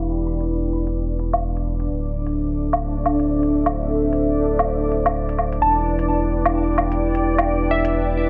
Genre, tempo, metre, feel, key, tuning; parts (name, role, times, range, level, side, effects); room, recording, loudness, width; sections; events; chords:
future garage; 129 BPM; 4/4; swing 60% on 16ths; E minor; A4 = 440 Hz
glassy wavetable pluck; melody; 0.0-0.5, 5.6-8.0 s; E5 to B5; -25 LUFS; equal; chorus, cassette tape, digital delay
dark analog pad; sustained chords; 0.0-8.3 s; D4 to G5; -25 LUFS; equal; chorus
warm sub bass; bass; 0.0-8.3 s; D1 to E1; -26 LUFS; equal
backwards swelling texture; texture; 0.1-8.3 s; D4 to D5; -30 LUFS; equal; built-in reverb
electronic hi-hat and woodblock; drums; 0.4-7.9 s; -25 LUFS; equal
moderate lush hall reverb, RT60 1.9 s; heavily compressed radio sound, multiband compression, vinyl crackle, low-pass filter; -21 LUFS; mono
0.0-8.3 A section
filter sweep 0.0-8.3
0.0 Em7; 1.9 D5; 5.6 Em7